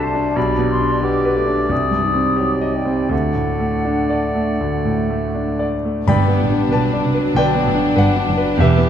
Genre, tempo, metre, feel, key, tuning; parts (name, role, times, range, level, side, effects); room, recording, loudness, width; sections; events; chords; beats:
classical, romantic movement for piano and orchestra; 79-98 BPM; 4/4; rubato; G major; A4 = 440 Hz
bright concert grand piano; melody; 0.0-8.9 s; B1 to B5; -18 LUFS; equal
clear oboe; second line; 0.0-5.7 s; C5 to D5; -30 LUFS; right 2 dB
dark clarinet; second line; 0.0-5.7 s; D4 to G4; -27 LUFS; left 1 dB
mellow hollow silver concert flute; second line; 0.0-5.7 s; F#5 to Eb6; -24 LUFS; left 2 dB
mellow bassoon; accompaniment; 0.0-5.7 s; F#3 to D4; -26 LUFS; right 1 dB
warm chamber violin section; melody; 6.1-8.9 s; D4 to G4; -28 LUFS; left 2 dB
warm chamber violin section; second line; 6.1-8.9 s; B3 to D4; -25 LUFS; left 1 dB
warm chamber viola section; accompaniment; 6.1-8.9 s; E3 to G3; -27 LUFS; right 1 dB
dark chamber cello section; bass; 6.1-8.9 s; E2 to C3; -22 LUFS; right 2 dB
dark chamber double bass section; bass; 6.1-8.9 s; E1 to C2; -21 LUFS; right 3 dB
timpani; percussion; 6.1-7.0 s; G2; -24 LUFS; left 1 dB
moderate scoring stage reverb, RT60 1.6 s; -15 LUFS; side -9 dB against mid
0.0-6.1 A section; 6.1-8.9 B section
0.4 G/B; 1.7 Cm; 3.1 D; 6.1 G
| 0.36 1.03 1.71 2.39 | 3.12 3.87 4.62 5.36 | 6.08 6.72 7.35 7.97 | 8.58